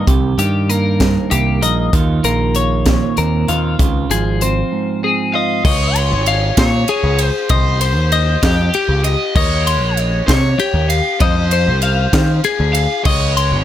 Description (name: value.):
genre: math rock and midwest emo.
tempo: 65 BPM (dotted quarters).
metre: 6/8.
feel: straight.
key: Db lydian.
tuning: A4 = 440 Hz.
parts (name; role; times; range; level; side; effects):
clean electric guitar; accompaniment; 0.0-7.5 s; G2 to Bb4; -20 LUFS; right 8 dB; none.
twelve-string electric guitar; arpeggios; 0.0-13.6 s; G4 to C6; -20 LUFS; left 7 dB; none.
growling picked electric bass; bass; 0.0-13.6 s; Ab1 to Eb3; -16 LUFS; equal; overdrive.
crisp fusion drum kit; drums; 0.1-13.5 s; crash cymbal, hi-hat, kick drum, ride cymbal, snare drum; -18 LUFS; equal; none.
crunchy overdriven guitar; melody; 5.3-13.6 s; G4 to F5; -20 LUFS; equal; slapback echo.
room: little or no reverb.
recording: none.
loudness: -13 LUFS.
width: side -11 dB against mid.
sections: 0.0-5.6 A section; 5.6-13.6 B section.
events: none.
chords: 0.0 Cm7; 1.9 Ebsus2; 3.8 Dbmaj9; 7.5 Cmadd11; 9.4 Eb6; 11.2 Fm7; 13.1 Dbmaj7sus2.